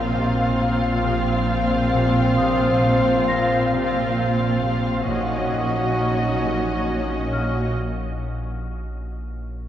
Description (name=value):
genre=cinematic, suspense film score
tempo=67 BPM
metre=3/4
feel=straight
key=Bb minor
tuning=A4 = 440 Hz
part: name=muted symphonic violin section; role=melody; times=0.0-7.7 s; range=Eb5 to F5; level=-28 LUFS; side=left 2 dB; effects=none
part: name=muted studio violin section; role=second line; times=0.0-7.7 s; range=F4 to Gb4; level=-28 LUFS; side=equal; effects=none
part: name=muted symphonic viola section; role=accompaniment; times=0.0-7.7 s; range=C4 to Db4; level=-28 LUFS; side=right 1 dB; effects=none
part: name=mellow French horn section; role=sustained chords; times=0.0-7.7 s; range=F3 to Eb4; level=-26 LUFS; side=left 1 dB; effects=none
part: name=concert harp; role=riff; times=0.0-9.7 s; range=Bb2 to Bb3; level=-29 LUFS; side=left 3 dB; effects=none
part: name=muted symphonic cello section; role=bass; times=0.0-7.7 s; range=Bb2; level=-27 LUFS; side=right 2 dB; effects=none
part: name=muted symphonic double bass section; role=bass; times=0.0-7.7 s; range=Bb1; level=-27 LUFS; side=right 3 dB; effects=none
part: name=punchy sub bass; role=drone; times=0.0-9.7 s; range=Bb1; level=-31 LUFS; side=equal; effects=none
part: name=celesta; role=texture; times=0.0-9.7 s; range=Bb4 to Bb6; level=-36 LUFS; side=left 2 dB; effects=none
room=wet cathedral reverb, RT60 5.1 s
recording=worn, warbling old tape, cassette tape, warbly pitch drift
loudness=-19 LUFS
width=side -11 dB against mid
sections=0.0-9.7 A section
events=break 7.8-9.7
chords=0.0 Bbsus2; 5.1 Gb6/Bb